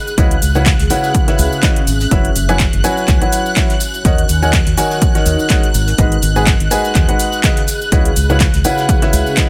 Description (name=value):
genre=piano house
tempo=124 BPM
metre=4/4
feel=swing 55% on 16ths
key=unclear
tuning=A4 = 441 Hz
part: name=analog string pad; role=sustained chords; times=0.0-9.5 s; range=F#6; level=-26 LUFS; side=equal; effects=ensemble chorus, sidechain pumping
part: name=granular cloud pad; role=texture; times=0.0-9.5 s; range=C#4 to B5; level=-29 LUFS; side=equal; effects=built-in reverb, sidechain pumping
part: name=house drum kit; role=drums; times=0.1-9.5 s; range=cabasa, handclaps, hi-hat, rim click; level=-23 LUFS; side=equal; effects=overdrive
part: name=tambourine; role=percussion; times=0.1-9.5 s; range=none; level=-33 LUFS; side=equal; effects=none
part: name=clear concert grand piano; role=riff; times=0.2-9.5 s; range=C#3 to G#5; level=-20 LUFS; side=equal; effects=sidechain pumping, digital delay
part: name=fingered electric bass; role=bass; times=0.2-9.2 s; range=F#1 to D#2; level=-18 LUFS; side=equal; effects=sidechain pumping
part: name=electronic kick drum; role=drums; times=0.2-9.5 s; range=none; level=-17 LUFS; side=equal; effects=overdrive
part: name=warm soul drum kit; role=drums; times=0.2-9.5 s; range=hi-hat, shaker, snare drum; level=-32 LUFS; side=equal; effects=none
room=studio reverb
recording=none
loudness=-14 LUFS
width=mono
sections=0.0-9.5 A section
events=none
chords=0.0 C#m11; 2.1 F#7sus4; 4.0 D#m7; 5.7 G#m7; 7.7 C#m11